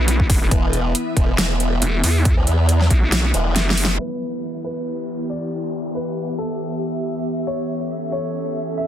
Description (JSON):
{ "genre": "heavy wobble dubstep", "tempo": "138 BPM", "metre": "4/4", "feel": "swing 55% on 16ths, half-time", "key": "E minor", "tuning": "A4 = 438 Hz", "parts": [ { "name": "evolving wavetable pad", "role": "sustained chords", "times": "0.0-8.9 s", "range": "E3 to E5", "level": "-28 LUFS", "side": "right 1 dB", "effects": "chorus, built-in reverb, sidechain pumping" }, { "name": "vowel-sweep wobble bass", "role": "bass", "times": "0.0-4.0 s", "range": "E1 to E2", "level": "-18 LUFS", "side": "equal", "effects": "chorus, overdrive" }, { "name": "ethereal airy pad", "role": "texture", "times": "0.0-8.9 s", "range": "B3 to E5", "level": "-28 LUFS", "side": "left 1 dB", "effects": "ensemble chorus, built-in reverb, sidechain pumping" }, { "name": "big-room dance drum kit", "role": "drums", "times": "0.1-3.9 s", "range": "hi-hat, snare drum", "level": "-22 LUFS", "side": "equal", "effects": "overdrive, low-pass filter on hats, low-pass filter on snare" }, { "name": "electronic kick drum", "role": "drums", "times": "0.2-3.0 s", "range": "none", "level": "-17 LUFS", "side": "equal", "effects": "overdrive" }, { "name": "formant-sweep wobble bass", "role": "bass", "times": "0.5-3.5 s", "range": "E1 to E2", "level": "-18 LUFS", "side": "equal", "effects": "chorus, overdrive" }, { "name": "clear baby grand piano", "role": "melody", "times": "4.0-8.9 s", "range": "A4 to E5", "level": "-30 LUFS", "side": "left 2 dB", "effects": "digital delay" }, { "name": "downlifter", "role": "sound effects", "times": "4.3-7.5 s", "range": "none", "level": "-42 LUFS", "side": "left 1 dB", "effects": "none" } ], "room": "light reverb", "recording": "dense, heavily limited modern master, low-pass filter", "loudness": "-18 LUFS", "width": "side -11 dB against mid", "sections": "0.0-4.0 A section; 4.0-8.9 B section", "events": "drop 0.0-4.0; break 3.1-4.0; drum fill 3.6-4.0; band accent 3.8; filter sweep on ambient pad 4.0-8.9; filter sweep 4.0-8.9", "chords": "0.0 E5; 4.0 Em; 7.5 A", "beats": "0.08 | 0.51 0.95 1.38 1.82 | 2.25 2.69 3.12 3.56 | 3.99 4.43 4.86 5.30 | 5.73 6.17 6.60 7.04 | 7.47 7.91 8.34 8.78" }